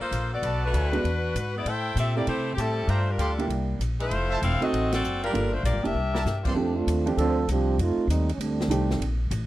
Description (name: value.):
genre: jazz, big band swing.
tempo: 196 BPM.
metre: 4/4.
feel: swing 63% on 8ths.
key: F major.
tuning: A4 = 440 Hz.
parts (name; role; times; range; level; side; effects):
edgy saxophone section; melody; 0.0-6.4 s; G3 to G5; -28 LUFS; left 2 dB; none.
upright bass; bass; 0.0-9.5 s; E1 to C3; -26 LUFS; equal; none.
swinging big-band drum kit; drums; 0.1-9.4 s; crash cymbal, hi-hat, kick drum, ride cymbal, snare drum; -38 LUFS; equal; none.
clear trumpet section; stabs; 0.4-6.5 s; E4 to C6; -33 LUFS; right 1 dB; none.
clear baby grand piano; accompaniment; 0.9-9.0 s; Eb3 to A4; -28 LUFS; right 3 dB; none.
warm trombone section; second line; 6.5-8.9 s; E3 to A4; -26 LUFS; right 3 dB; none.
room: small room ambience.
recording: dry, close 1970s-style studio recording, faint mains hum.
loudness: -23 LUFS.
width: side -15 dB against mid.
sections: 0.0-6.6 A section; 6.6-9.5 B section.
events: band accent 4.9; drum fill 5.9-6.2; trombone section solo 6.6-9.5.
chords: 0.4 Bm7; 1.0 E7; 1.7 Am7; 2.9 Gm7; 3.5 C7; 4.1 Fmaj7; 4.7 D7b9; 5.3 Gm7; 5.9 C13; 6.6 F13.